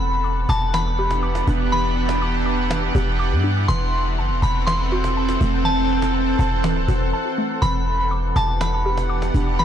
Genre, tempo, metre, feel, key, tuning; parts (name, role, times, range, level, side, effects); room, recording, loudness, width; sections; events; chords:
hip hop, atmospheric cloud-rap; 122 BPM; 4/4; half-time; E minor; A4 = 441 Hz
glassy synth bell; melody; 0.0-9.6 s; A5 to C6; -25 LUFS; left 1 dB; chorus, low-pass filter, tape echo
shimmering ambient pad; sustained chords; 0.0-9.6 s; E3 to F#5; -24 LUFS; right 1 dB; chorus, built-in reverb
hollow square pluck; arpeggios; 0.0-9.6 s; E3 to D6; -29 LUFS; left 1 dB; chorus, low-pass filter, tape echo
warm 808-style bass; bass; 0.0-9.6 s; D1 to G2; -22 LUFS; equal
cajon; drums; 0.0-9.6 s; -29 LUFS; equal
little or no reverb; blown-out, overdriven recording, overdrive; -18 LUFS; side -9 dB against mid
0.0-9.6 A section
break 7.1-7.6
0.0 Em7; 3.7 F#m7b5/E; 7.6 Em7